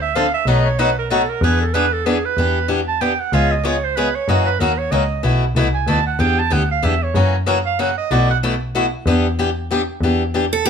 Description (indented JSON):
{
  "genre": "acoustic string swing (jazz manouche)",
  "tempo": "188 BPM",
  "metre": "3/4",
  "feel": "swing 60% on 8ths",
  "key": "unclear",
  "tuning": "A4 = 441 Hz",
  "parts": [
    { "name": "warm clarinet", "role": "second line", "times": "0.0-8.4 s", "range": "G#4 to A5", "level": "-21 LUFS", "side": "right 8 dB", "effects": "none" },
    { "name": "clear double bass", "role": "bass", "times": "0.0-10.7 s", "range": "B1 to F#2", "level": "-20 LUFS", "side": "equal", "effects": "none" },
    { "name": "picked swing-style acoustic guitar", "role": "accompaniment", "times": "0.2-10.7 s", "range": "B2 to A4", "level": "-19 LUFS", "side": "left 3 dB", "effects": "none" },
    { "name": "picked steel-string acoustic guitar", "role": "melody", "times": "10.5-10.7 s", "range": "G4 to A4", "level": "-15 LUFS", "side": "right 7 dB", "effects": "slapback echo" }
  ],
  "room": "moderate studio reverb, RT60 0.8 s",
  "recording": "none",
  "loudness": "-15 LUFS",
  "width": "side -7 dB against mid",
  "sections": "0.0-2.4 A section; 2.4-10.0 A section",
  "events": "clarinet solo 0.0-10.0",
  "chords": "0.5 B7; 1.4 E7; 2.4 Em7; 3.3 C#7; 4.3 F#7; 5.2 B7sus4; 6.2 Em7; 7.1 F#7; 8.1 B7sus4; 9.1 Em7",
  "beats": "0.14 | 0.46 0.78 1.10 | 1.42 1.74 2.06 | 2.37 2.69 3.01 | 3.33 3.65 3.97 | 4.29 4.60 4.92 | 5.24 5.56 5.88 | 6.19 6.51 6.83 | 7.15 7.47 7.78 | 8.10 8.42 8.74 | 9.05 9.37 9.69 | 10.01 10.33 10.64"
}